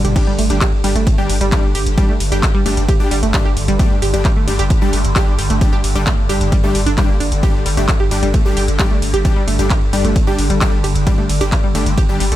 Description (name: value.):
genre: driving peak-time techno.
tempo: 132 BPM.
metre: 4/4.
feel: straight.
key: unclear.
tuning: A4 = 440 Hz.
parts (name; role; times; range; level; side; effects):
analog pluck; riff; 0.0-12.4 s; G3 to G4; -22 LUFS; right 2 dB; chorus, tube saturation, sidechain pumping, ping-pong delay.
saturated sub bass; bass; 0.0-12.4 s; G1; -20 LUFS; equal; tube saturation, sidechain pumping, low-pass filter.
swarming drone; drone; 0.0-12.4 s; G2 to D3; -23 LUFS; equal; built-in reverb, phaser, sidechain pumping.
techno drum kit; drums; 0.0-12.4 s; crash cymbal, handclaps, hi-hat, ride cymbal, toms; -24 LUFS; equal; none.
supersaw stab; stabs; 0.2-12.3 s; G3 to G4; -23 LUFS; left 2 dB; sidechain pumping, tape echo.
electronic kick drum; drums; 0.2-12.1 s; none; -16 LUFS; equal; none.
room: light reverb.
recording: none.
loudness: -13 LUFS.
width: side -13 dB against mid.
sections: 0.0-12.4 A section.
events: break 0.0; drum fill 0.0.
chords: 0.0 G5.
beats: | 0.16 0.61 1.07 1.52 | 1.98 2.43 2.89 3.34 | 3.79 4.25 4.70 5.16 | 5.61 6.07 6.52 6.98 | 7.43 7.89 8.34 8.79 | 9.25 9.70 10.16 10.61 | 11.07 11.52 11.98.